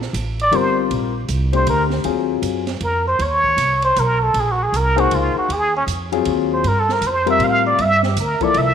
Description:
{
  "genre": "modal jazz",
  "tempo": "157 BPM",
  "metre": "3/4",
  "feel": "swing 64% on 8ths",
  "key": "unclear",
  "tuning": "A4 = 440 Hz",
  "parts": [
    { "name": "upright bass", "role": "bass", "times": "0.0-8.7 s", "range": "G1 to A2", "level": "-22 LUFS", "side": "right 1 dB", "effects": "none" },
    { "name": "open jazz drum kit", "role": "drums", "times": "0.0-8.7 s", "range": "hi-hat, kick drum, ride cymbal, snare drum", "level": "-31 LUFS", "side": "right 7 dB", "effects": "none" },
    { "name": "trumpet with plunger mute", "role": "melody", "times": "0.4-8.7 s", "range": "Db4 to F5", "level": "-17 LUFS", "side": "right 1 dB", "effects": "none" },
    { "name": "warm grand piano", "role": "accompaniment", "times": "0.5-2.6, 5.0-8.7 s", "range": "F3 to C5", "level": "-21 LUFS", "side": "left 11 dB", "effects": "none" }
  ],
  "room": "moderate echo chamber reverb, RT60 2.1 s",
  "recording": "1960s-style stereo with parts hard left and right",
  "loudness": "-15 LUFS",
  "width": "side -8 dB against mid",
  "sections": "0.0-8.7 A section",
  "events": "muted trumpet solo 0.0-8.7",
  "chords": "0.0 Gm9; 2.1 Ebmadd9; 6.6 Gm9"
}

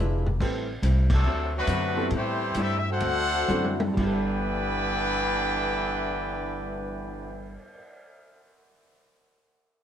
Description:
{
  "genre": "jazz, big band swing",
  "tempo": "121-142 BPM",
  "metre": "4/4",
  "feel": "swing 66% on 8ths",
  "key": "G major",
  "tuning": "A4 = 440 Hz",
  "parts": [
    { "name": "vintage hollow-body jazz guitar", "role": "accompaniment", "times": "0.0-7.7 s", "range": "A2 to A4", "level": "-36 LUFS", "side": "left 3 dB", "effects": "none" },
    { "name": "warm concert grand piano", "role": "accompaniment", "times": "0.0-7.8 s", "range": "G2 to B4", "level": "-34 LUFS", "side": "right 2 dB", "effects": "none" },
    { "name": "upright bass", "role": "bass", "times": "0.0-7.6 s", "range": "F1 to A2", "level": "-28 LUFS", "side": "equal", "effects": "none" },
    { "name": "vintage drum kit", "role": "drums", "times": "0.3-7.8 s", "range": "crash cymbal, cymbal swell, hi-hat, kick drum, ride cymbal, toms", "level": "-33 LUFS", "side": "equal", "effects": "none" },
    { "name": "bright trumpet section", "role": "melody", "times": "1.1-7.6 s", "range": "F#3 to G5", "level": "-29 LUFS", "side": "equal", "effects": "none" },
    { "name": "clear trombone section", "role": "second line", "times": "1.1-7.6 s", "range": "G2 to F#4", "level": "-31 LUFS", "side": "left 1 dB", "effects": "none" }
  ],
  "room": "light reverb",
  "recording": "minimal, uncompressed stereo recording",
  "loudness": "-24 LUFS",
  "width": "side -9 dB against mid",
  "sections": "0.4-4.0 A section; 4.0-7.9 B section",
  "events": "drum fill 0.0-0.4, 3.5-4.0; slowing down 0.4-4.0; band accent 1.0",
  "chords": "0.4 Am7; 1.2 D7; 2.1 Am7; 3.0 D7; 4.0 G69"
}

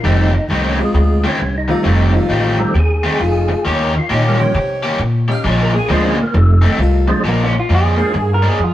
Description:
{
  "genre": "blues",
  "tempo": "134 BPM",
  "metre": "4/4",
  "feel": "swing 63% on 8ths",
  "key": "unclear",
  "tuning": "A4 = 440 Hz",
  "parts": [
    { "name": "percussive tonewheel organ", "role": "accompaniment", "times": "0.0-8.1 s", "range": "Bb2 to F5", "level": "-20 LUFS", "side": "right 1 dB", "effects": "slow rotary speaker, chorus vibrato" },
    { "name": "cranked stack guitar", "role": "riff", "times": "0.0-8.6 s", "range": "F2 to G4", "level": "-19 LUFS", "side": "left 1 dB", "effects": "overdrive" },
    { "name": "mellow saxophone section", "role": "stabs", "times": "0.0-8.5 s", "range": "A3 to Db5", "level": "-22 LUFS", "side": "left 3 dB", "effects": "none" },
    { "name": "upright bass", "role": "bass", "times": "0.0-8.7 s", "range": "F1 to C3", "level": "-15 LUFS", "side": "equal", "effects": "none" },
    { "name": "electric guitar through a small old amp", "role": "melody", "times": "7.3-8.7 s", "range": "Bb3 to Bb4", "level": "-18 LUFS", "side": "right 2 dB", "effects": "none" }
  ],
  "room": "moderate stone room reverb, RT60 1.2 s",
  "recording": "rough rehearsal-room recording, warm saturation",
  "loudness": "-12 LUFS",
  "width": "side -13 dB against mid",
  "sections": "0.0-7.2 A section; 7.2-8.7 A section",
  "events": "clean electric guitar solo 7.2-8.7",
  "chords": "0.0 F7; 3.7 Eb7; 5.4 Bb7; 6.3 F7; 7.2 Bb7"
}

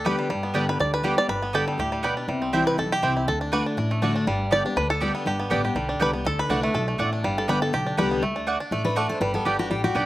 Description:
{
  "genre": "bluegrass",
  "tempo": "242 BPM",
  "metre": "4/4",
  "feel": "straight",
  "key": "G major",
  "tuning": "A4 = 438 Hz",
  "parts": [
    { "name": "bluegrass banjo", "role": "melody", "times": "0.0-10.1 s", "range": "G3 to D5", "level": "-25 LUFS", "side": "right 1 dB", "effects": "slapback echo" },
    { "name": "picked steel-string acoustic guitar", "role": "accompaniment", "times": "0.0-10.1 s", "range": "G2 to D5", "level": "-26 LUFS", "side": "left 2 dB", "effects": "none" },
    { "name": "mandolin", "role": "stabs", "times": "0.0-10.1 s", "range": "A3 to G5", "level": "-28 LUFS", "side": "right 4 dB", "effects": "slapback echo" },
    { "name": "upright bass", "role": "bass", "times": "0.0-10.1 s", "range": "G1 to D2", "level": "-31 LUFS", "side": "equal", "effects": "none" }
  ],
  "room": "little or no reverb",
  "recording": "recorded outdoors, with no room sound",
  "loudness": "-22 LUFS",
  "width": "side -15 dB against mid",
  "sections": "0.3-8.2 A section; 8.2-10.1 A section",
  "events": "five-string banjo solo 0.0-8.2; steel-string acoustic guitar solo 8.2-10.1",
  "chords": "0.3 G; 2.3 C; 3.3 D; 4.3 G; 6.3 D; 7.2 G; 8.2 D; 9.2 G"
}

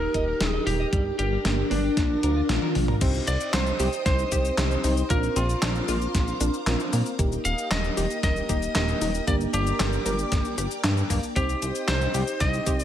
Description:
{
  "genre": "synthwave",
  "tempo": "115 BPM",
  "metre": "4/4",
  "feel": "straight",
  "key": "C minor",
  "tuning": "A4 = 442 Hz",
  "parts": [
    { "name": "lightly driven lead guitar", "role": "melody", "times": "0.0-12.8 s", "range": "D4 to F5", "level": "-29 LUFS", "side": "equal", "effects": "vintage 12-bit sampler grit, tape echo" },
    { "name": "string machine, full ensemble", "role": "sustained chords", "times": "0.0-12.8 s", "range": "D4 to Eb6", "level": "-33 LUFS", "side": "equal", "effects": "ensemble chorus, sidechain pumping" },
    { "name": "chorused synth bass", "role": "bass", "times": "0.0-12.8 s", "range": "Eb1 to Bb2", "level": "-27 LUFS", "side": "equal", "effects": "sidechain pumping" },
    { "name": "clean electric guitar", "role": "riff", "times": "0.1-2.9 s", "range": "G3 to Eb5", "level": "-37 LUFS", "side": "right 2 dB", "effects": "lush chorus, tape echo" },
    { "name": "clean 12-bit digital drum machine", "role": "drums", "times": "0.1-12.8 s", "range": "cabasa, crash cymbal, handclaps, hi-hat, snare drum, toms", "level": "-28 LUFS", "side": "left 1 dB", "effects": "gated reverb" },
    { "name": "electronic kick drum", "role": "drums", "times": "0.1-12.8 s", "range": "none", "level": "-26 LUFS", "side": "equal", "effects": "none" },
    { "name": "analog pluck", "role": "arpeggios", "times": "3.0-12.8 s", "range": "Bb3 to C5", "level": "-34 LUFS", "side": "left 2 dB", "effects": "chorus, tape echo" },
    { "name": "FM electric piano with soft pad layer", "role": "stabs", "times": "3.0-12.8 s", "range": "Bb3 to C5", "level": "-32 LUFS", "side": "right 1 dB", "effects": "chorus" }
  ],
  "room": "light reverb, digital ambience",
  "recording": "none",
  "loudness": "-22 LUFS",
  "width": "side -10 dB against mid",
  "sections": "0.0-3.0 A section; 3.0-12.8 B section",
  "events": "band accent 2.5; drum fill 2.6-3.0",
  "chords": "0.0 Eb; 0.9 Gm; 2.0 Bb; 3.0 Cm; 5.1 Bbadd9; 7.2 Eb; 9.3 Gm; 11.4 Cm"
}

